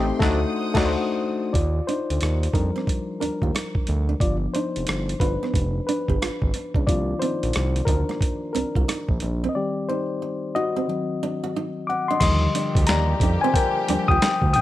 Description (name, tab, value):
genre	R&B, neo-soul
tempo	90 BPM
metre	4/4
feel	swing 63% on 16ths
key	Eb major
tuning	A4 = 440 Hz
part	mellow reed electric piano	accompaniment	0.0-14.6 s	D3 to Eb6	-24 LUFS	left 3 dB	none
part	warm studio string section	sustained chords	0.0-1.5, 12.2-14.6 s	D3 to Eb6	-32 LUFS	right 1 dB	none
part	mellow horn section	stabs	0.0-0.9 s	F#3 to D4	-33 LUFS	right 3 dB	none
part	smooth synth bass	bass	0.0-14.6 s	F1 to F2	-24 LUFS	right 1 dB	none
part	boom bap sampler-style drum kit	drums	0.2-14.6 s	crash cymbal, hi-hat, kick drum, rim click, snare drum	-24 LUFS	right 1 dB	none
part	nylon-string guitar	second line	1.9-14.6 s	Bb3 to G4	-30 LUFS	right 6 dB	none
room	small room ambience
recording	none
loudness	-21 LUFS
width	side -14 dB against mid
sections	0.0-1.5 A section; 1.5-12.2 B section; 12.2-14.6 C section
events	band accent 0.0-1.5; reed electric piano solo 1.5-12.2, 12.2-14.6; break 9.5-12.2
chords	0.2 D7b9; 1.5 Ebmaj9; 4.2 G7; 6.9 Cm11; 9.5 Eb6; 10.9 D7b9; 12.2 Ebmaj9